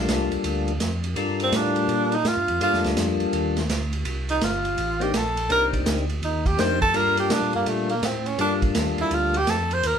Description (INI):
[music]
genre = soul jazz organ trio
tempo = 166 BPM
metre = 4/4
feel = swing 64% on 8ths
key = G minor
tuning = A4 = 440 Hz
[part]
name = percussive tonewheel organ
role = melody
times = 0.0-9.4 s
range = G3 to Bb4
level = -26 LUFS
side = left 5 dB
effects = slow rotary speaker
[part]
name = tonewheel organ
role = bass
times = 0.0-10.0 s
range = G1 to C3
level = -28 LUFS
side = equal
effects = overdrive, chorus vibrato, slow rotary speaker
[part]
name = vintage drum kit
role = drums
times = 0.1-9.9 s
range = hi-hat, kick drum, ride cymbal, snare drum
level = -28 LUFS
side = right 2 dB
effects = none
[part]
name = breathy tenor saxophone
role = melody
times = 1.4-10.0 s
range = A3 to C5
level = -23 LUFS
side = right 1 dB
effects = none
[sound]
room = moderate studio reverb, RT60 0.5 s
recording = band playing live in one room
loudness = -21 LUFS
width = side -7 dB against mid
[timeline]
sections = 0.0-10.0 A section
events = tenor saxophone solo 0.0-10.0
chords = 0.0 Gm9